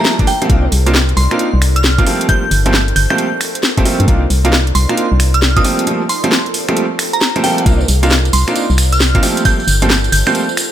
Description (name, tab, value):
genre	UK garage, two-step garage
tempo	134 BPM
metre	4/4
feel	swing 64% on 16ths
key	C dorian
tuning	A4 = 438 Hz
part	glassy synth bell	melody	0.0-10.3 s	G5 to G6	-19 LUFS	right 2 dB	chorus, ping-pong delay
part	ethereal airy pad	sustained chords	0.0-10.7 s	Eb4 to D5	-26 LUFS	right 1 dB	ensemble chorus, built-in reverb, sidechain pumping
part	clear baby grand piano	stabs	0.0-10.4 s	F3 to F4	-17 LUFS	right 2 dB	ping-pong delay
part	house drum kit	drums	0.0-10.7 s	finger snaps, hi-hat, snare drum	-17 LUFS	equal	studio reverb
part	electronic kick drum	drums	0.2-9.6 s	none	-14 LUFS	left 1 dB	overdrive, studio reverb
part	organ-like FM bass	bass	0.5-10.2 s	G1 to G2	-13 LUFS	equal	none
part	tambourine	percussion	7.7-10.7 s	none	-22 LUFS	right 3 dB	none
room	little or no reverb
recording	none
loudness	-11 LUFS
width	side -11 dB against mid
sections	0.0-10.7 A section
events	break 5.9-7.7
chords	0.5 Cm11; 2.1 Gm11; 4.1 Cm11; 5.6 Gm11; 7.7 Cm11; 9.2 Gm11